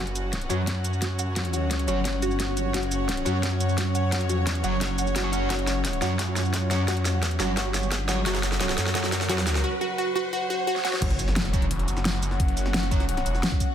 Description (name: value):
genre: dark technical drum and bass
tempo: 174 BPM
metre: 4/4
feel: straight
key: unclear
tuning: A4 = 440 Hz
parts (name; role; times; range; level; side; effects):
- deep dark ambient pad; sustained chords; 1.1-13.7 s; F#3 to F#5; -32 LUFS; left 1 dB; chorus, built-in reverb, sidechain pumping
- analog pluck; arpeggios; 0.0-10.9 s; F#4 to F#5; -31 LUFS; equal; chorus, phaser, sidechain pumping, digital delay
- snarling distorted saw bass; bass; 0.0-13.4 s; E1 to F#2; -27 LUFS; equal; distortion, overdrive
- riser, swell and impact; sound effects; 0.0-12.4 s; none; -36 LUFS; equal; none
- rich studio string section; texture; 0.0-13.7 s; C#4 to F#5; -36 LUFS; equal; sidechain pumping
- dubstep drum kit; drums; 0.1-13.7 s; crash cymbal, hi-hat, shaker, snare drum; -29 LUFS; equal; overdrive, high-pass filter on hats, high-pass filter on toms, high-pass filter on snare, high-pass filter on perc, high-pass filter on cymbals
- electronic kick drum; drums; 0.3-13.7 s; none; -29 LUFS; equal; overdrive, high-pass filter on kick
- fuzz guitar; stabs; 0.5-9.4, 11.5-13.0 s; F#3 to C#5; -32 LUFS; right 2 dB; distortion, low-pass filter, digital delay
- jungle sampler-style drum kit; drums; 11.0-13.7 s; hi-hat, snare drum; -39 LUFS; equal; none
room: light reverb, digital ambience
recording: none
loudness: -23 LUFS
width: side -9 dB against mid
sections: 0.0-11.0 A section; 11.0-13.7 B section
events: build-up 0.0-11.0; drum fill 0.0-9.6, 10.8; riser 0.0-11.0; filter sweep on synth arpeggio sound 0.0-11.0; swell 10.3-11.0; drop 11.0-13.7; impact 11.0-12.4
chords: 0.0 F#5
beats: 0.33 0.67 1.02 | 1.36 1.71 2.05 2.40 | 2.74 3.09 3.43 3.78 | 4.12 4.47 4.81 5.16 | 5.50 5.85 6.19 6.54 | 6.88 7.22 7.57 7.92 | 8.26 8.61 8.95 9.29 | 9.64 9.98 10.33 10.67 | 11.02 11.36 11.71 12.05 | 12.40 12.74 13.09 13.43